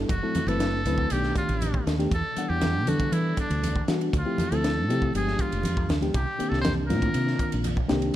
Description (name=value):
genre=electric jazz fusion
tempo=119 BPM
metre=4/4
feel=straight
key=unclear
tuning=A4 = 440 Hz
part: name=bright reed electric piano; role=accompaniment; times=0.0-8.1 s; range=D#3 to F#5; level=-29 LUFS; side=left 2 dB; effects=none
part: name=woody fretless electric bass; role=bass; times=0.0-8.1 s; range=F1 to E3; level=-27 LUFS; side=equal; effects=none
part: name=trumpet with metal mute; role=melody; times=0.1-7.6 s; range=D4 to C5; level=-31 LUFS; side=equal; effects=none
part: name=crisp fusion drum kit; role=drums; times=0.1-8.1 s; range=hi-hat, kick drum, ride cymbal, snare drum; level=-29 LUFS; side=equal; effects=none
part: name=congas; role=percussion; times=0.1-7.8 s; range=none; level=-32 LUFS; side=right 1 dB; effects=none
room=light reverb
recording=dark, warm production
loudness=-23 LUFS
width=side -13 dB against mid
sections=0.0-8.2 A section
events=none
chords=0.1 F#m7b5; 1.1 B7alt; 2.1 Em9; 4.1 Dm11; 5.1 G7b9; 6.1 Cm9